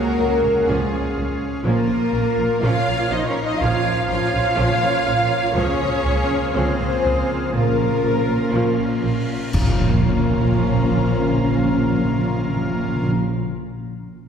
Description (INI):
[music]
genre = cinematic, epic orchestral film score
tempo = 122 BPM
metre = 4/4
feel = straight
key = Bb minor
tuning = A4 = 441 Hz
[part]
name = warm symphonic violin section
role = melody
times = 0.0-13.1 s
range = Db4 to F5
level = -28 LUFS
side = left 3 dB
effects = none
[part]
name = bright small flute group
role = second line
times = 0.0-13.1 s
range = F4 to Bb5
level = -30 LUFS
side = right 1 dB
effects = none
[part]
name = warm symphonic violin section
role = second line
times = 0.0-13.1 s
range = F4 to F5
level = -32 LUFS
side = left 1 dB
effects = none
[part]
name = warm symphonic viola section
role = accompaniment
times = 0.0-13.1 s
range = F3 to Db4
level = -30 LUFS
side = right 1 dB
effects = none
[part]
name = dark French horn section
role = sustained chords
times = 0.0-13.1 s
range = Ab4 to F5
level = -25 LUFS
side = left 2 dB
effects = none
[part]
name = pipe organ, strings celeste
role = sustained chords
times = 0.0-13.1 s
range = Bb3 to F5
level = -28 LUFS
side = equal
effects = none
[part]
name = warm trombone section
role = sustained chords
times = 0.0-13.1 s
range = Db3 to Db4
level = -31 LUFS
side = right 2 dB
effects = none
[part]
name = rich symphonic cello section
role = bass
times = 0.0-13.1 s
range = Ab3 to F4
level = -26 LUFS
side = equal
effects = none
[part]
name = rich symphonic double bass section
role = bass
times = 0.2-13.1 s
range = Bb1 to Db2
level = -24 LUFS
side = right 2 dB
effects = none
[part]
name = timpani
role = percussion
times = 1.6-2.3, 7.5-13.1 s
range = Bb2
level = -24 LUFS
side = equal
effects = none
[part]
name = cymbal swell, clash cymbals and concert bass drum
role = percussion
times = 5.6-10.5 s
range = none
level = -25 LUFS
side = left 1 dB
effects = none
[part]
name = cymbal swell and impact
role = sound effects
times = 9.2-11.5 s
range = none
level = -29 LUFS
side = left 1 dB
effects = none
[sound]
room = wet concert hall reverb, RT60 2.5 s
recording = heard from further back in the room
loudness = -17 LUFS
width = side -7 dB against mid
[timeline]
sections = 0.0-9.5 A section; 9.5-13.5 B section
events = cymbal swell 9.2-9.5; band accent 9.5-10.0; impact 9.5-11.5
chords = 0.0 Db; 1.6 Bbm; 5.6 Db; 7.5 Bbm